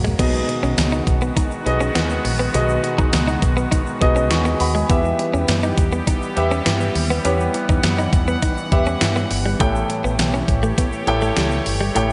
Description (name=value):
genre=1980s-style pop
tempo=102 BPM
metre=4/4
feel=straight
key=unclear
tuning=A4 = 442 Hz
part: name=warm concert grand piano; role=accompaniment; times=0.0-12.1 s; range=A2 to C#6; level=-25 LUFS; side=equal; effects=slapback echo, shimmer reverb
part: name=sweeping resonant pad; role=sustained chords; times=0.0-12.1 s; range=C#3 to F#5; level=-28 LUFS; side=equal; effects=chorus, shimmer reverb
part: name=direct-recorded clean electric guitar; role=riff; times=0.0-12.1 s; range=G3 to D#4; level=-28 LUFS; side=equal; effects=subtle chorus, digital delay, shimmer reverb
part: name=mellow fretless electric bass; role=bass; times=0.0-12.1 s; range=G1 to G2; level=-25 LUFS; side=equal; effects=none
part: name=clean 12-bit digital drum machine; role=drums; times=0.0-12.1 s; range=crash cymbal, hi-hat, kick drum, snare drum, tambourine, toms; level=-23 LUFS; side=equal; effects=overdrive
part: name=egg shaker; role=percussion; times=0.0-12.1 s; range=none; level=-44 LUFS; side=equal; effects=none
room=moderate lush hall reverb, RT60 2.3 s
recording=big arena sound, nothing above 10.7 kHz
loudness=-19 LUFS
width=mono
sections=0.2-12.1 A section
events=drum fill 0.0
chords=0.2 B6; 4.9 Em; 9.6 A7